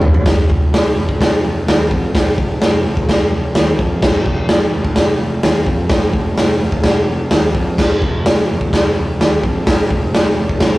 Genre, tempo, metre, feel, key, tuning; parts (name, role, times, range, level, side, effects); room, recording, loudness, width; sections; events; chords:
garage rock duo or trio; 128 BPM; 4/4; straight; A4 = 440 Hz
fuzz picked electric bass; bass; 0.0-10.8 s; F1 to F2; -21 LUFS; equal; overdrive
raw garage drum kit; drums; 0.0-10.7 s; crash cymbal, hi-hat, kick drum, snare drum, toms; -13 LUFS; equal
light reverb; rough rehearsal-room recording; -12 LUFS; side -18 dB against mid
0.3-10.8 A section
drum fill 0.0